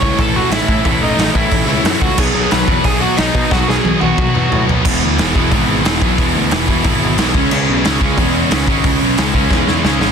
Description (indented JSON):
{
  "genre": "punk rock",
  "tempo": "180 BPM",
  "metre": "4/4",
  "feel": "straight",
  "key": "E major from 4.8 s",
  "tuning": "A4 = 438 Hz",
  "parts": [
    { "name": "lead guitar through a small cranked amp", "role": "melody", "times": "0.0-4.6 s", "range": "D#4 to C#6", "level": "-19 LUFS", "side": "equal", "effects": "overdrive" },
    { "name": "distorted electric guitar", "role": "riff", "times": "0.0-10.1 s", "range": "E2 to C#4", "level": "-21 LUFS", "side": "left 14 dB", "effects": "distortion" },
    { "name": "distorted electric guitar", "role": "riff", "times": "0.0-10.1 s", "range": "E2 to C#4", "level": "-20 LUFS", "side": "right 14 dB", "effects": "distortion" },
    { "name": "tight distorted guitar", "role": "riff", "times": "0.0-10.1 s", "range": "A2 to G#4", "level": "-20 LUFS", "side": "equal", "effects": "distortion" },
    { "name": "fuzz picked electric bass", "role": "bass", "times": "0.0-10.1 s", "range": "E1 to B2", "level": "-19 LUFS", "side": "equal", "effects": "overdrive" },
    { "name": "raw garage drum kit", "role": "drums", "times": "0.0-10.1 s", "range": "crash cymbal, hi-hat, kick drum, snare drum, toms", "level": "-17 LUFS", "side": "equal", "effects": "none" }
  ],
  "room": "little or no reverb",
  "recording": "dense, heavily limited modern master",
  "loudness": "-12 LUFS",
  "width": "side -6 dB against mid",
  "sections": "0.0-4.8 A section; 4.8-10.1 B section",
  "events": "drum fill 3.5-4.8, 9.5-10.1",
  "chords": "0.0 A; 2.2 B; 4.8 E; 7.3 C#m"
}